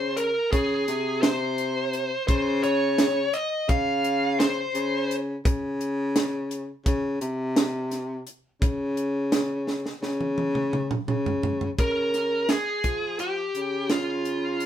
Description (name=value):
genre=progressive instrumental, band music in an uneven meter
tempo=170 BPM (eighths)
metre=9/8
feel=straight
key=Db lydian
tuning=A4 = 440 Hz
part: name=bluesy overdriven lead guitar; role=melody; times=0.0-5.1, 11.8-14.7 s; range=F4 to F5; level=-25 LUFS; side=equal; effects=distortion
part: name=warm baritone saxophone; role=bass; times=0.0-14.7 s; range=C3 to F3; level=-27 LUFS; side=left 1 dB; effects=none
part: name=tight funk drum kit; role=drums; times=0.2-14.7 s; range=hi-hat, kick drum, snare drum, toms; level=-24 LUFS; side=right 1 dB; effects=none
room=moderate studio reverb, RT60 0.5 s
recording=band playing live in one room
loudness=-23 LUFS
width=side -10 dB against mid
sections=0.0-11.8 A section; 11.8-14.7 B section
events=drum fill 9.7-11.8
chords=0.0 Dbmaj7(no3); 11.8 Db6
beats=0.18 0.53 0.88 1.23 1.58 1.94 | 2.29 2.64 2.99 3.34 3.69 4.05 4.40 4.75 5.10 | 5.46 5.81 6.16 6.51 6.86 7.21 7.57 7.92 8.27 | 8.62 8.97 9.33 9.68 10.03 10.38 10.74 11.09 11.44 | 11.79 12.14 12.50 12.85 13.20 13.55 13.91 14.26 14.61